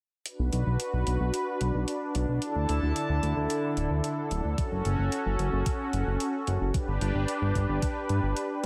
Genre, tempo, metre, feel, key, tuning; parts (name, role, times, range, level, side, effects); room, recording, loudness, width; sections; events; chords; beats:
synthwave; 111 BPM; 4/4; straight; B minor; A4 = 441 Hz
brassy analog pad; sustained chords; 0.3-8.7 s; D3 to A5; -32 LUFS; equal; chorus, sidechain pumping
electronic hi-hat; drums; 0.3-8.7 s; -41 LUFS; equal; overdrive
fat analog bass; bass; 0.4-8.7 s; D1 to G2; -30 LUFS; equal
electronic kick drum; drums; 4.6-7.9 s; -33 LUFS; equal; overdrive
moderate plate reverb, RT60 2.0 s, digital ambience; dreamy mix soaked in reverb; -29 LUFS; mono
0.3-8.7 A section
filter sweep on analog synth bass 0.3-8.7
0.3 Bm; 2.4 Dsus2; 4.6 F#m; 6.7 G
| 0.26 0.80 1.34 1.88 | 2.42 2.96 3.50 4.04 | 4.58 5.12 5.66 6.20 | 6.74 7.29 7.83 8.37